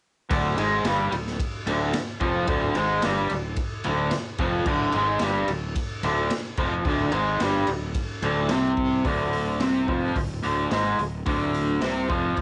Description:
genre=garage rock duo or trio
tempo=109 BPM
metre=4/4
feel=straight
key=unclear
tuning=A4 = 440 Hz
part: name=raw garage guitar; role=riff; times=0.3-12.4 s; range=D2 to C4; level=-26 LUFS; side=equal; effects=overdrive, cassette tape
part: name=fuzz fingered electric bass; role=bass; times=0.3-12.4 s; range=D1 to C2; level=-34 LUFS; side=equal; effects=overdrive
part: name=raw garage drum kit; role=drums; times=0.3-12.4 s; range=crash cymbal, hi-hat, kick drum, ride cymbal, snare drum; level=-33 LUFS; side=equal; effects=none
room=small room reverb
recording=home recording on cassette, nothing above 10.9 kHz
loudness=-25 LUFS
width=mono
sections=0.3-9.1 A section; 9.1-12.4 B section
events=none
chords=0.3 Dm7b5

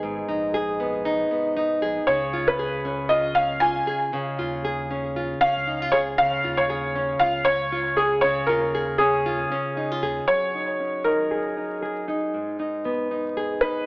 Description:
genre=folktronica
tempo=117 BPM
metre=4/4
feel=swing 56% on 16ths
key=unclear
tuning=A4 = 439 Hz
part: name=nylon-string guitar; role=arpeggios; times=0.0-13.9 s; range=G#2 to G#4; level=-25 LUFS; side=equal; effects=low-pass filter, tape echo
part: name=warm sub bass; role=bass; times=0.0-10.2 s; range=G#1 to D#2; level=-42 LUFS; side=equal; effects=none
part: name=felt-muted upright piano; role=melody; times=2.1-13.9 s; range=G#4 to G#5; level=-21 LUFS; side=equal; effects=tape echo
room=light reverb, small room ambience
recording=vinyl crackle, AM radio sound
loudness=-21 LUFS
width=side -27 dB against mid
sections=0.0-10.3 A section; 10.3-13.9 B section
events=filter sweep on nylon-string guitar 10.3-13.9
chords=0.0 G#m; 2.1 C#; 10.3 F#69; 12.3 G#m

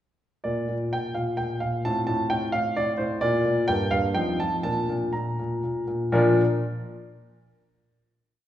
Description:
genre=classical-period piano sonatina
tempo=119-132 BPM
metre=3/4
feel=rubato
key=Bb major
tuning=A4 = 440 Hz
part: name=clear grand piano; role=solo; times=0.4-6.4 s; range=G2 to Bb5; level=-23 LUFS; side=equal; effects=none
room=wet recital hall reverb, RT60 1.6 s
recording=heard from further back in the room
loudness=-23 LUFS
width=side -12 dB against mid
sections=0.5-6.1 A section; 6.1-7.6 final chord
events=none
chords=0.5 Bb; 1.8 F/A; 3.2 Bb; 3.7 Gm; 4.2 F7; 4.6 Bb

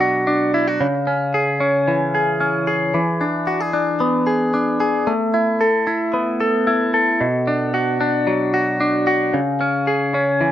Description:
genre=indie pop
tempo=113 BPM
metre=4/4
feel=straight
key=A major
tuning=A4 = 445 Hz
part: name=direct-recorded clean electric guitar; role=solo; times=0.0-10.5 s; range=B2 to A4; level=-16 LUFS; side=equal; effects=phaser
room=moderate studio reverb, RT60 0.5 s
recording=rough home demo mix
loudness=-16 LUFS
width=side -11 dB against mid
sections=0.0-10.5 A section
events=none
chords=0.0 Bm; 0.8 C#m; 2.9 E7; 5.1 Asus2; 7.2 Bm; 9.3 C#5

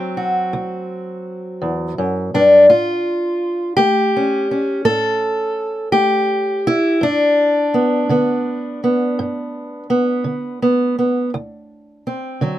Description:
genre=acoustic country blues, solo or duo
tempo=56 BPM (dotted quarters)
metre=12/8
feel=straight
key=D mixolydian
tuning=A4 = 440 Hz
part: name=fingerpicked steel-string acoustic guitar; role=solo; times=0.0-12.6 s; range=D2 to A4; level=-15 LUFS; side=equal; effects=none
room=little or no reverb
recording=close, detailed microphones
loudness=-15 LUFS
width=side -13 dB against mid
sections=0.0-12.6 A section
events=none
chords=0.0 D7; 2.7 A7; 7.0 G; 11.3 D7

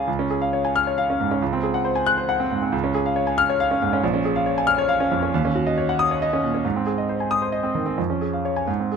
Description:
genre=classical, virtuoso piano study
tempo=91 BPM (dotted quarters)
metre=6/8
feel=rubato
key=Db major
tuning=A4 = 440 Hz
part: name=clear concert grand piano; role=solo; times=0.0-9.0 s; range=Bb1 to Gb6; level=-19 LUFS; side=equal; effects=none
room=light reverb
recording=close, detailed microphones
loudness=-19 LUFS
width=side -6 dB against mid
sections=0.1-9.0 A section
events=none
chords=0.1 Db; 1.4 Ab7/Db; 2.7 Db; 4.0 Bbm7; 5.3 Ebm7; 6.6 Ab; 8.0 Db/F

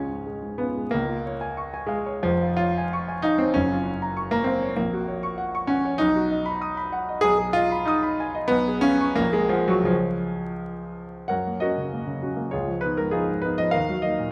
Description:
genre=classical, romantic character piece for solo piano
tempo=82-102 BPM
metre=2/4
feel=rubato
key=Db major, F# major from 6.0 s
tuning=A4 = 439 Hz
part: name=clear grand piano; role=solo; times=0.0-14.3 s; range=F1 to D#6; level=-25 LUFS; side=equal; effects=none
room=wet recital hall reverb, RT60 1.4 s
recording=vinyl crackle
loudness=-24 LUFS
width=mono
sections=0.9-11.3 A section; 11.3-14.3 B section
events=none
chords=0.0 Db; 2.2 Db/F; 3.5 Gbmaj7; 4.8 Gb/Bb; 6.0 B; 7.2 G#m/B; 8.5 C#7/B; 9.2 F#/A#; 9.9 C#; 11.3 F#; 12.5 C#9; 13.7 D#m

